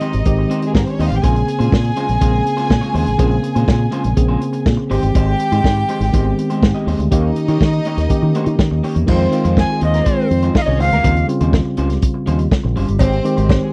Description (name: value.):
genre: disco.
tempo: 122 BPM.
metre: 4/4.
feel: straight.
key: Bb dorian.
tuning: A4 = 440 Hz.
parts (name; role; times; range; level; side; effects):
warm studio violin section; second line; 0.0-13.7 s; Ab3 to Ab5; -25 LUFS; equal; none.
electric guitar at the edge of break-up; accompaniment; 0.0-13.7 s; G3 to Eb5; -28 LUFS; equal; none.
mellow tine electric piano; accompaniment; 0.0-13.7 s; Db3 to Ab4; -22 LUFS; equal; none.
vintage drum kit; drums; 0.0-13.6 s; crash cymbal, hi-hat, kick drum, snare drum; -19 LUFS; equal; none.
fingered electric bass with an envelope filter; bass; 0.1-13.6 s; Gb1 to Eb3; -20 LUFS; equal; none.
breathy tenor recorder; melody; 9.6-11.3 s; Eb5 to Ab5; -21 LUFS; equal; none.
cowbell; percussion; 13.0-13.6 s; none; -29 LUFS; equal; none.
room: little or no reverb.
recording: dry, close 1970s-style studio recording.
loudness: -16 LUFS.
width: mono.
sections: 0.0-9.1 A section; 9.1-13.7 B section.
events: none.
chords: 0.0 Abmaj7; 1.2 Bbm9; 4.9 Abmaj7; 7.1 Eb7; 9.1 Fm7; 11.0 Eb13; 13.0 Abmaj7.